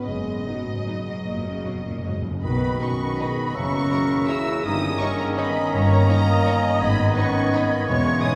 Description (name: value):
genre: classical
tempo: 144-180 BPM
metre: 3/4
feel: rubato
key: B major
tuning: A4 = 441 Hz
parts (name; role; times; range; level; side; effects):
- warm symphonic violin section; second line; 0.0-8.3 s; D#4 to D#5; -36 LUFS; equal; none
- dark French horn section; sustained chords; 0.0-8.4 s; F#3 to E4; -30 LUFS; equal; none
- rich symphonic cello section; bass; 0.1-8.2 s; E2 to C#3; -29 LUFS; equal; none
- rich symphonic double bass section; bass; 0.1-8.2 s; E1 to B1; -30 LUFS; equal; none
- timpani; percussion; 0.1-2.4 s; F#2; -36 LUFS; equal; none
- warm symphonic violin section; melody; 0.5-8.4 s; B4 to E6; -34 LUFS; equal; none
- warm symphonic viola section; accompaniment; 0.5-8.4 s; A#3 to D#5; -31 LUFS; equal; none
- bright clarinet; second line; 2.4-8.4 s; G#3 to F#4; -36 LUFS; equal; none
- clear oboe; second line; 2.4-8.4 s; C#5 to E5; -36 LUFS; equal; none
- small flute group; second line; 2.4-8.4 s; A#5 to G#6; -34 LUFS; equal; none
- mellow bassoon; accompaniment; 2.4-8.4 s; C#3 to E3; -33 LUFS; equal; none
- dark trombone section; sustained chords; 2.4-8.4 s; C#3 to C#4; -36 LUFS; equal; none
room: wet cathedral reverb, RT60 4.9 s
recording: heard from further back in the room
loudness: -22 LUFS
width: mono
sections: 0.0-2.4 A section; 2.4-8.4 B section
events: timpani fill 1.3-2.4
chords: 0.1 B/F#; 1.3 F#; 2.4 B; 3.5 F#7; 4.7 D#7/G; 6.8 G#m